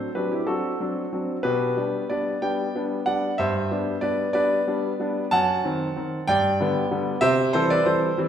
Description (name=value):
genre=classical-period piano sonatina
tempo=63 BPM (dotted quarters)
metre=6/8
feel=straight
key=G major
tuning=A4 = 440 Hz
part: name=clear concert grand piano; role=solo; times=0.0-8.3 s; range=F#2 to A5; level=-21 LUFS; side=equal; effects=none
room=wet recital hall reverb, RT60 1.4 s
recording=heard from further back in the room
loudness=-21 LUFS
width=side -9 dB against mid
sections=0.0-8.3 A section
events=none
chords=0.0 D7; 1.4 G/B; 3.4 G; 5.3 F#dim7; 6.3 G; 7.2 C